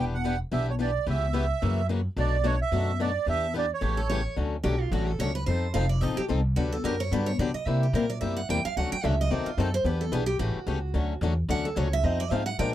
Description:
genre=acoustic string swing (jazz manouche)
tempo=218 BPM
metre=4/4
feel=swing 56% on 8ths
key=D major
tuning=A4 = 440 Hz
part: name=accordion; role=melody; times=0.0-4.2 s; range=C#5 to F#5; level=-29 LUFS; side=right 7 dB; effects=light tremolo tuning
part: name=picked swing-style acoustic guitar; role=accompaniment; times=0.0-12.7 s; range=B2 to Bb4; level=-30 LUFS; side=left 6 dB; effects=none
part: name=upright bass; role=bass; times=0.0-12.7 s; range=E1 to D3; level=-28 LUFS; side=equal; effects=none
part: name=picked steel-string acoustic guitar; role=second line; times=4.0-12.7 s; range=F4 to G5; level=-31 LUFS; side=right 4 dB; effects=none
room=little or no reverb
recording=dry, close 1970s-style studio recording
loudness=-24 LUFS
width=side -12 dB against mid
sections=0.0-4.4 A section; 4.4-12.7 B section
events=steel-string acoustic guitar solo 4.4-12.7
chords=0.0 Em7; 1.1 C#m7b5; 1.6 F#7; 2.2 Bm7; 3.3 Em7; 3.8 A7; 4.4 Dmaj7; 5.5 F7; 6.6 Gmaj7; 7.7 C7; 8.8 Dmaj7; 9.3 D#dim7; 9.9 Em7; 10.4 A7; 10.9 Dmaj7; 12.0 Fm7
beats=0.24 0.52 0.79 | 1.07 1.34 1.62 1.89 | 2.17 2.44 2.72 2.99 | 3.27 3.54 3.82 4.09 | 4.37 4.64 4.92 5.19 | 5.47 5.74 6.02 6.29 | 6.57 6.84 7.12 7.39 | 7.67 7.94 8.21 8.49 | 8.76 9.04 9.31 9.58 | 9.86 10.13 10.40 10.68 | 10.95 11.22 11.49 11.77 | 12.04 12.31 12.59

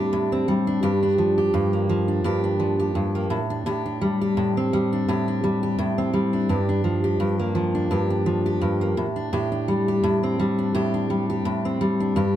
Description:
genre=pop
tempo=85 BPM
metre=4/4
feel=swing 55% on 16ths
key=unclear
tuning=A4 = 442 Hz
part: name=fingerpicked steel-string acoustic guitar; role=solo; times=0.0-12.4 s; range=G2 to G4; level=-20 LUFS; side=equal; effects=none
room=light reverb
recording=none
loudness=-20 LUFS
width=side -12 dB against mid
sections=0.0-12.4 A section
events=none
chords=0.0 D7sus4/A; 0.8 Gm7; 3.3 D7sus4/A; 6.5 Gm7; 9.0 D7sus4/A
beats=0.13 | 0.84 1.54 2.25 2.96 | 3.67 4.38 5.08 5.79 | 6.50 7.21 7.92 8.62 | 9.33 10.04 10.75 11.46 | 12.16

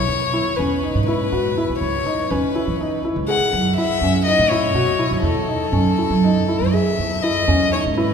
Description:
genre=contemporary instrumental, chamber music in an uneven meter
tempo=243 BPM (eighths)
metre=7/8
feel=straight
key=unclear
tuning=A4 = 440 Hz
part: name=warm violin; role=melody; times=0.0-8.1 s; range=A4 to F#5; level=-21 LUFS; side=left 4 dB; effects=none
part: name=upright bass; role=bass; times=0.0-8.1 s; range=C#2 to F#3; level=-21 LUFS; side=right 3 dB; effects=none
part: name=felt-muted upright piano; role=arpeggios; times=0.3-8.1 s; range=C#4 to G#4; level=-22 LUFS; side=left 1 dB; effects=none
room=wet cathedral reverb, RT60 6.4 s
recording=recorded in a church or concert hall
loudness=-16 LUFS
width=side -6 dB against mid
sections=0.1-8.1 A section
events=none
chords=0.1 E; 3.5 F#m7; 7.0 E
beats=| 0.08 0.33 0.58 0.83 1.07 1.32 1.57 | 1.82 2.06 2.31 2.55 2.80 3.04 3.29 | 3.53 3.77 4.02 4.26 4.51 4.75 5.00 | 5.24 5.49 5.73 5.98 6.23 6.48 6.74 | 6.99 7.24 7.49 7.73 7.98

